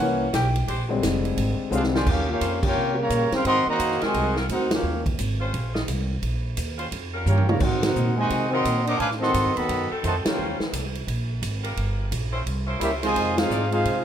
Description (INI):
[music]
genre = jazz, big band swing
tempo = 173 BPM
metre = 4/4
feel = swing 63% on 8ths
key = Eb major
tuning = A4 = 441 Hz
[part]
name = clear baby grand piano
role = accompaniment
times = 0.0-1.9 s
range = D3 to G5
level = -24 LUFS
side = left 3 dB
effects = none
[part]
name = upright bass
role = bass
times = 0.0-14.0 s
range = F1 to C3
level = -26 LUFS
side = right 1 dB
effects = none
[part]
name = bright saxophone section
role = sustained chords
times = 0.3-13.6 s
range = Eb2 to Eb5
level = -33 LUFS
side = equal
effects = none
[part]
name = swinging big-band drum kit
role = drums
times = 0.3-14.0 s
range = crash cymbal, hi-hat, kick drum, ride cymbal, snare drum, toms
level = -29 LUFS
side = right 1 dB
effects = none
[part]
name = clear trombone section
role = second line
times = 1.7-5.0, 7.3-10.6, 12.8-14.0 s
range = C3 to G4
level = -26 LUFS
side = equal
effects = none
[part]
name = warm trumpet section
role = melody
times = 1.8-5.1, 7.3-10.6, 12.8-14.0 s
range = Db4 to D6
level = -25 LUFS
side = equal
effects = none
[sound]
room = moderate large studio reverb, RT60 0.9 s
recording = none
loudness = -21 LUFS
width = side -9 dB against mid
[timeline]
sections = 0.0-2.1 A section; 2.1-14.0 B section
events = grand piano solo 0.0-2.1; drum fill 1.7-2.1, 7.3-7.6; band accent 2.6, 4.7, 7.8, 10.2, 13.3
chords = 0.0 C7b9; 0.7 Bb13; 2.1 Eb13; 3.5 Ab13; 4.8 Eb13; 7.6 Ab9; 9.0 Adim7; 10.4 Eb13; 11.8 Gm7; 12.5 C7b9; 13.2 Fm7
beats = 0.33 | 0.68 1.03 1.37 1.72 | 2.06 2.41 2.76 3.10 | 3.45 3.80 4.14 4.49 | 4.84 5.18 5.53 5.88 | 6.22 6.57 6.92 7.26 | 7.61 7.96 8.30 8.65 | 8.99 9.34 9.69 10.03 | 10.38 10.73 11.07 11.42 | 11.77 12.11 12.46 12.81 | 13.15 13.50 13.85